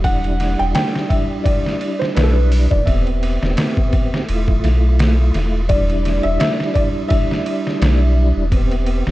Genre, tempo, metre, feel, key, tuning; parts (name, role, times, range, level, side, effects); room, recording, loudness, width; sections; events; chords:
trip hop; 85 BPM; 4/4; swing 55% on 16ths; E minor; A4 = 436 Hz
felt-muted upright piano; melody; 0.0-9.1 s; A4 to G5; -24 LUFS; left 1 dB; tape echo
mellow tonewheel organ; accompaniment; 0.0-9.1 s; G3 to G4; -23 LUFS; right 1 dB; chorus vibrato, fast rotary speaker, tremolo, tape echo
warm sub bass; bass; 0.0-9.1 s; E1 to B1; -16 LUFS; equal; tube saturation
trip hop sampler-style drum kit; drums; 0.0-9.1 s; hi-hat, kick drum, ride cymbal, snare drum; -19 LUFS; equal; overdrive
little or no reverb; dark, warm production; -14 LUFS; side -17 dB against mid
0.0-9.1 A section
0.0 Em7; 2.9 Cmaj7/E; 4.3 Fmaj7/E; 5.7 Em7; 8.5 Cmaj7/E